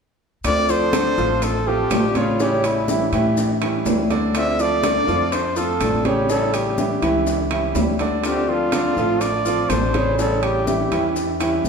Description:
latin, Cuban son and guajira; 123 BPM; 4/4; straight; D minor; A4 = 440 Hz
flamenco guitar; accompaniment; 0.4-11.7 s; D3 to F4; -25 LUFS; left 4 dB
upright bass; bass; 0.4-11.7 s; A1 to A2; -25 LUFS; equal
bongos; percussion; 0.4-11.7 s; -30 LUFS; left 4 dB
congas; percussion; 0.4-11.7 s; -31 LUFS; left 2 dB
maracas; percussion; 0.4-11.7 s; -36 LUFS; left 5 dB
timbales; percussion; 0.4-11.6 s; -29 LUFS; right 4 dB
breathy trumpet; melody; 0.5-10.9 s; E4 to E5; -23 LUFS; equal
clear baby grand piano; arpeggios; 0.7-11.7 s; C#3 to D5; -23 LUFS; right 4 dB
wet recital hall reverb, RT60 1.6 s; recorded in a church or concert hall; -17 LUFS; side -5 dB against mid
0.4-11.7 A section
0.4 Dm7; 2.4 A7; 4.3 Dm7; 6.3 A7; 8.2 Dm7; 10.2 A7
| 0.45 0.94 1.42 1.91 | 2.40 2.89 3.37 3.86 | 4.35 4.83 5.32 5.81 | 6.29 6.78 7.27 7.75 | 8.24 8.73 9.21 9.70 | 10.19 10.67 11.16 11.65

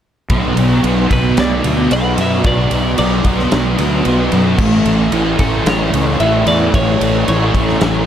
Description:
rock, shoegaze and dream pop; 112 BPM; 4/4; straight; A4 = 440 Hz
thick fuzz guitar; riff; 0.3-8.1 s; A2 to B3; -15 LUFS; equal; distortion, ensemble chorus
fuzz fingered electric bass; bass; 0.3-8.0 s; A1 to F#2; -18 LUFS; equal; overdrive
big rock drum kit; drums; 0.3-7.9 s; crash cymbal, kick drum, ride cymbal, snare drum; -18 LUFS; equal
twelve-string electric guitar; melody; 1.1-8.1 s; A4 to F#5; -20 LUFS; equal; phaser, digital delay
light reverb, small room ambience; -12 LUFS; side -10 dB against mid
0.3-8.1 A section
0.3 Bm; 4.6 A
| 0.31 0.85 1.38 1.92 | 2.46 2.99 3.53 4.06 | 4.60 5.14 5.67 6.21 | 6.75 7.28 7.82

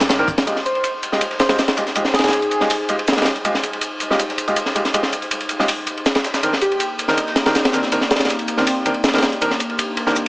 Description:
drum and bass, jungle; 161 BPM; 4/4; straight; F minor; A4 = 440 Hz
warm 808-style bass; bass; 0.0-0.5 s; G1; -41 LUFS; equal; tube saturation
crunchy breakbeat drum kit; drums; 0.0-10.2 s; kick drum, ride cymbal, snare drum; -19 LUFS; equal; high-pass filter on kick, high-pass filter on cymbals, high-pass filter on snare, high-pass filter on room
dusty soul sampler-style drum kit; drums; 0.0-10.3 s; hi-hat, shaker, snare drum; -28 LUFS; equal; overdrive, high-pass filter on perc, high-pass filter on hats, high-pass filter on snare, high-pass filter on room
bright concert grand piano; stabs; 0.2-10.1 s; Eb3 to Eb5; -22 LUFS; equal; low-pass filter, dub echo
warbly tape-like pad; sustained chords; 0.6-10.3 s; Bb3 to G5; -29 LUFS; left 1 dB; chorus, built-in reverb
airy dreamy lead; melody; 0.7-2.7, 6.6-8.7 s; C4 to C5; -24 LUFS; equal; chorus, dub echo
light reverb, studio ambience; small speaker sound; -16 LUFS; side -23 dB against mid
0.5-10.3 A section
filter sweep on ambient pad 0.5-10.3; filter sweep on grand piano 0.5-10.3
0.5 Fm9; 6.4 Cm9
0.10 | 0.47 0.84 1.21 1.59 | 1.96 2.33 2.70 3.08 | 3.45 3.82 4.20 4.57 | 4.94 5.31 5.68 6.06 | 6.43 6.80 7.18 7.55 | 7.92 8.29 8.67 9.04 | 9.41 9.79 10.16

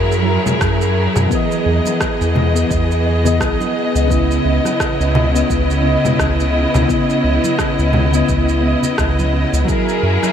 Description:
sunset chillout; 86 BPM; 4/4; swing 57% on 16ths; C# dorian; A4 = 444 Hz
soft electric-piano-like synth keys; accompaniment; 0.0-10.3 s; C#3 to D#5; -19 LUFS; equal; chorus, auto-pan, analog delay
clear studio string section; sustained chords; 0.0-10.3 s; C#3 to D#5; -19 LUFS; left 1 dB
round analog bass; bass; 0.0-10.2 s; B1 to F#2; -17 LUFS; equal
electronic shaker, congas and rim click; drums; 0.1-10.3 s; -24 LUFS; equal
congas; percussion; 0.5-10.3 s; -30 LUFS; right 4 dB
electronic kick drum; drums; 0.6-9.8 s; -22 LUFS; equal
moderate huge ambient reverb, RT60 8.6 s; dreamy mix soaked in reverb; -13 LUFS; side -8 dB against mid
0.0-10.3 A section
0.0 F#9; 1.3 Emaj7; 4.1 C#m9; 9.7 F#9
0.61 | 1.31 2.01 2.71 3.40 | 4.10 4.80 5.50 6.20 | 6.89 7.59 8.29 8.99 | 9.68

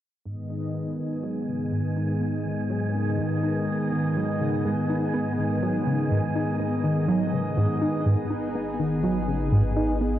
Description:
ambient; 123 BPM; 4/4; straight; G# minor; A4 = 439 Hz
lush unison pad; sustained chords; 0.3-10.2 s; G#2 to D#5; -26 LUFS; equal; chorus
tight sequenced synth; riff; 0.3-10.2 s; G#2 to D#4; -26 LUFS; equal; chorus, cassette tape, ping-pong delay
wind-like tuned noise texture; texture; 1.4-8.1 s; G#5; -39 LUFS; right 5 dB; built-in reverb
warm sub bass; bass; 8.1-10.2 s; G#1; -30 LUFS; equal; tube saturation
moderate plate reverb, RT60 3.0 s; worn, warbling old tape, cassette tape, warbly pitch drift; -23 LUFS; side -12 dB against mid
0.3-8.1 A section; 8.1-10.2 B section
fade-in on synth arpeggio sound 0.3-8.1; fade-in on synth texture 0.3-8.1; filter sweep on analog synth pad 0.3-8.1
0.3 G#m
| 0.26 0.75 1.23 1.72 | 2.21 2.70 3.19 3.67 | 4.16 4.65 5.14 5.62 | 6.11 6.60 7.09 7.58 | 8.06 8.55 9.04 9.53 | 10.02

